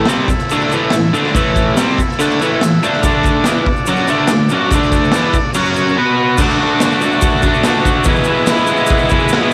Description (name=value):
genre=garage rock duo or trio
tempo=143 BPM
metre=4/4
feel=straight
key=unclear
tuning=A4 = 440 Hz
part: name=combo organ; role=sustained chords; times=0.0-9.5 s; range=B3 to B5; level=-24 LUFS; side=equal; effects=none
part: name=overdriven electric guitar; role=riff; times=0.0-9.5 s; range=E2 to B4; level=-16 LUFS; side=equal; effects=none
part: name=raw garage drum kit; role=drums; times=0.1-9.4 s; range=crash cymbal, hi-hat, kick drum, snare drum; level=-19 LUFS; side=equal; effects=cassette tape
part: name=tube shaker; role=percussion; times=0.1-9.5 s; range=none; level=-32 LUFS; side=equal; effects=none
room=light reverb, small room ambience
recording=home recording on cassette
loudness=-14 LUFS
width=mono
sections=0.0-6.4 A section; 6.4-9.5 B section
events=transistor combo organ fill 1.8-3.0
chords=0.0 A5; 3.0 D5; 5.6 F#5; 6.0 B5; 6.4 D; 8.1 E